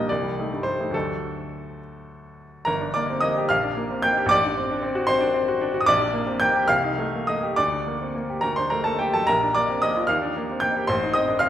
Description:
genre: classical, romantic character piece for solo piano.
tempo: 67-78 BPM (dotted quarters).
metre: 6/8.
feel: rubato.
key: G minor.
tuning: A4 = 442 Hz.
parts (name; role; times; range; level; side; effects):
clear baby grand piano; solo; 0.0-11.5 s; G1 to G6; -21 LUFS; equal; none.
room: wet concert hall reverb, RT60 1.8 s.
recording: recorded in a church or concert hall.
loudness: -20 LUFS.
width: side -11 dB against mid.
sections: 0.0-2.7 A section; 2.7-11.5 B section.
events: none.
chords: 0.1 Am7b5/C; 0.9 D; 2.7 Gm; 3.5 Gm/Bb; 4.3 D7/A; 5.9 Gm/Bb; 6.7 Am7b5/C; 7.6 Gm/D; 8.4 D; 9.3 Bb; 10.1 Ebmaj7; 10.9 Adim.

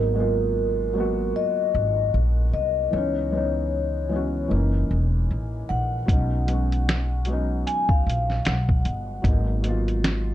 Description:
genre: lo-fi hip hop.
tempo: 76 BPM.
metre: 4/4.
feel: swing 57% on 16ths.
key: unclear.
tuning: A4 = 440 Hz.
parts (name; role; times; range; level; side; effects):
vibraphone with soft mallets; melody; 0.0-9.3 s; A#4 to G#5; -26 LUFS; left 2 dB; tape echo, plate reverb.
felt-muted upright piano; accompaniment; 0.0-10.3 s; E3 to F#4; -28 LUFS; equal; cassette tape, plate reverb.
upright bass; bass; 0.0-10.3 s; E1 to C#2; -24 LUFS; equal; none.
lo-fi sampler-style drum kit; drums; 6.1-10.2 s; finger snaps, hi-hat, kick drum, snare drum; -22 LUFS; equal; none.
room: light reverb.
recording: dark, warm production.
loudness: -21 LUFS.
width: side -12 dB against mid.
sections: 0.0-10.3 A section.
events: none.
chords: 0.0 G#m9; 2.9 C#m9; 4.5 F#13; 6.1 B6; 9.2 G#m9.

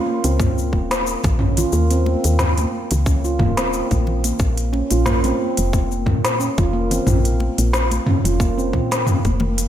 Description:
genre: organic downtempo.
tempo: 90 BPM.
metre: 4/4.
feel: swing 55% on 16ths.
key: Bb minor.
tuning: A4 = 439 Hz.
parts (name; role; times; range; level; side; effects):
handpan; arpeggios; 0.0-9.4 s; Bb3 to F4; -22 LUFS; right 2 dB; tape echo, slapback echo.
woody FM bass; bass; 0.2-9.7 s; Eb1 to Bb2; -20 LUFS; equal; sidechain pumping.
organic electronic drum kit; drums; 0.2-9.7 s; hi-hat, shaker, snare drum, toms; -22 LUFS; left 1 dB; overdrive.
electronic kick drum; drums; 0.4-9.4 s; none; -21 LUFS; equal; overdrive.
congas; percussion; 0.4-9.5 s; none; -30 LUFS; left 1 dB; slapback echo.
room: light reverb, digital ambience.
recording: none.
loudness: -16 LUFS.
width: side -10 dB against mid.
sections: 0.0-9.7 A section.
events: none.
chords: 0.0 Eb5; 4.4 Bb5.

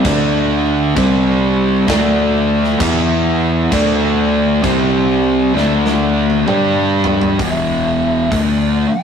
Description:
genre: stoner and doom metal.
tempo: 65 BPM.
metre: 4/4.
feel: swing 61% on 8ths.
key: E minor.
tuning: A4 = 440 Hz.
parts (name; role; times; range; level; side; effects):
biting overdriven guitar; riff; 0.0-7.4 s; C3 to G4; -18 LUFS; equal; none.
thick fuzz guitar; riff; 0.0-8.9 s; E2 to G4; -18 LUFS; left 4 dB; distortion.
thick fuzz guitar; riff; 0.0-8.9 s; E2 to G4; -17 LUFS; right 3 dB; distortion.
growling fingered electric bass; bass; 0.0-8.8 s; E1 to G2; -24 LUFS; equal; overdrive, tube saturation.
big rock drum kit; drums; 0.0-8.6 s; crash cymbal, hi-hat, kick drum, snare drum, toms; -23 LUFS; right 1 dB; none.
fuzz lead guitar; melody; 6.5-9.0 s; D5 to A5; -23 LUFS; equal; distortion.
room: moderate stone room reverb, RT60 1.4 s.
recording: rough rehearsal-room recording, tube saturation.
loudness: -12 LUFS.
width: side -7 dB against mid.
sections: 0.0-7.4 A section; 7.4-9.0 B section.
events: drum fill 5.6-7.4.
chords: 0.0 D5; 1.0 C5; 1.9 D5; 2.8 E5; 3.7 D5; 4.6 C5; 5.6 D5; 6.5 G5; 7.4 E5.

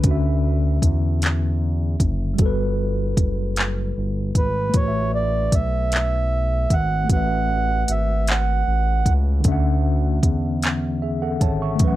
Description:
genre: slow six-eight R&B.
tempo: 51 BPM (dotted quarters).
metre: 6/8.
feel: straight.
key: unclear.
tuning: A4 = 440 Hz.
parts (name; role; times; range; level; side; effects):
mellow tine electric piano; accompaniment; 0.0-12.0 s; D3 to C#6; -26 LUFS; left 1 dB; medium stereo tremolo.
smooth gliding synth bass; bass; 0.0-12.0 s; F#1 to E2; -22 LUFS; equal; none.
smooth R&B drum kit; drums; 0.0-12.0 s; handclaps, hi-hat, kick drum; -20 LUFS; equal; none.
mellow accordion; melody; 4.4-9.1 s; B4 to F#5; -24 LUFS; right 4 dB; tape echo.
room: little or no reverb.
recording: dark, warm production.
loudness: -18 LUFS.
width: side -15 dB against mid.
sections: 0.0-12.0 A section.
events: none.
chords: 0.0 Dmaj9; 2.4 Gmaj9; 4.7 Asus2; 9.4 Dmaj9.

